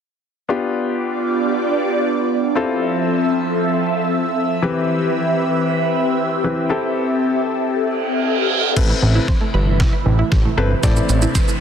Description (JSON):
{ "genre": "dance-pop", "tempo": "116 BPM", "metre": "4/4", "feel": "straight", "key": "A minor", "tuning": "A4 = 439 Hz", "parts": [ { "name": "clear grand piano", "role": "accompaniment", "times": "0.5-11.3 s", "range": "E3 to D5", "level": "-23 LUFS", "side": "left 4 dB", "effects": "sidechain pumping" }, { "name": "airy breathy pad", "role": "sustained chords", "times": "0.8-11.6 s", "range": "C3 to E5", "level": "-19 LUFS", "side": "equal", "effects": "chorus, phaser, sidechain pumping" }, { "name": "reverse cymbal and riser", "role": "sound effects", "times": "7.9-11.6 s", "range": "none", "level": "-24 LUFS", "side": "right 6 dB", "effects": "none" }, { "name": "wide unison pluck", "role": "arpeggios", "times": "8.8-11.6 s", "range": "C3 to C5", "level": "-26 LUFS", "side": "right 4 dB", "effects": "sidechain pumping, tape echo" }, { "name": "fat analog bass", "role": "bass", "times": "8.8-11.3 s", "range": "G1 to A1", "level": "-17 LUFS", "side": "equal", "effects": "sidechain pumping" }, { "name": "detuned 8-bit digital drum machine", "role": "drums", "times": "8.8-11.6 s", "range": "crash cymbal, hi-hat, kick drum, shaker, snare drum", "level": "-18 LUFS", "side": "equal", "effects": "none" } ], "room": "light reverb, digital ambience", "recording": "dense, heavily limited modern master", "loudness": "-16 LUFS", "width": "side -8 dB against mid", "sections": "0.5-8.8 A section; 8.8-11.6 B section", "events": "reverse cymbal 7.9-8.8; build-up 8.8-11.6; drum fill 8.8-11.6; riser 8.8-11.6", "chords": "0.5 G7; 2.6 Fmaj7; 4.6 Cmaj7/E; 6.7 Am7; 8.8 Amadd9" }